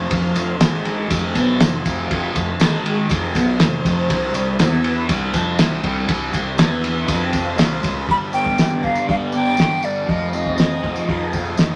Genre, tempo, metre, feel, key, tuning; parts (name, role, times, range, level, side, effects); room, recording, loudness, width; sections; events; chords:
psychedelic rock; 120 BPM; 4/4; straight; A4 = 440 Hz
phased string machine; sustained chords; 0.0-11.8 s; C3 to F5; -31 LUFS; equal; ensemble chorus, phaser
thick fuzz guitar; riff; 0.0-11.8 s; F2 to F4; -24 LUFS; equal; distortion, phaser
fuzz fingered electric bass; bass; 0.0-11.8 s; F1 to G2; -30 LUFS; equal; overdrive
cloth-damped thuddy drum kit; drums; 0.1-11.7 s; hi-hat, kick drum, ride cymbal, snare drum; -22 LUFS; equal
tambourine; percussion; 0.4-11.7 s; -39 LUFS; equal
breathy jazz flute; melody; 8.1-11.3 s; D5 to B5; -24 LUFS; equal
moderate club reverb, RT60 0.6 s; -19 LUFS; mono
0.0-8.1 A section; 8.1-11.8 B section
0.0 F5; 0.6 Ab5; 1.1 F5; 2.6 Ab5; 3.1 F5; 4.1 C5; 4.6 E5; 5.1 C5; 6.6 E5; 7.1 F5; 7.6 C5; 8.1 G; 10.1 Fm7